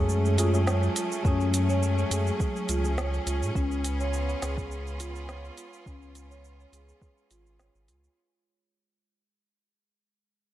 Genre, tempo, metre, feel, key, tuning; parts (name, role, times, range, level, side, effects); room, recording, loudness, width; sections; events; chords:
organic downtempo; 104 BPM; 4/4; swing 54% on 16ths; A4 = 440 Hz
tine electric piano; accompaniment; 0.0-2.9 s; F#3 to G#4; -32 LUFS; left 3 dB; medium stereo tremolo, sidechain pumping, digital delay
bright studio string section; sustained chords; 0.0-8.2 s; F#3 to G#4; -36 LUFS; right 1 dB; sidechain pumping
marimba with soft mallets; arpeggios; 0.0-8.0 s; C#4 to C#5; -33 LUFS; equal; vintage 12-bit sampler grit, low-pass filter, digital delay
warm sub bass; bass; 0.0-8.1 s; G#1 to A2; -28 LUFS; equal; sidechain pumping
quartz singing bowl; texture; 0.0-8.2 s; G#3 to G#4; -38 LUFS; right 2 dB
organic electronic drum kit; drums; 0.1-8.1 s; hi-hat, shaker, snare drum; -35 LUFS; right 1 dB
electronic kick drum; drums; 1.2-7.1 s; -28 LUFS; equal
light reverb, small room ambience; -24 LUFS; side -13 dB against mid
0.0-8.2 A section
fade-out 0.0-8.2; filter sweep on marimba 0.0-8.2
0.0 F#madd9; 3.6 C#7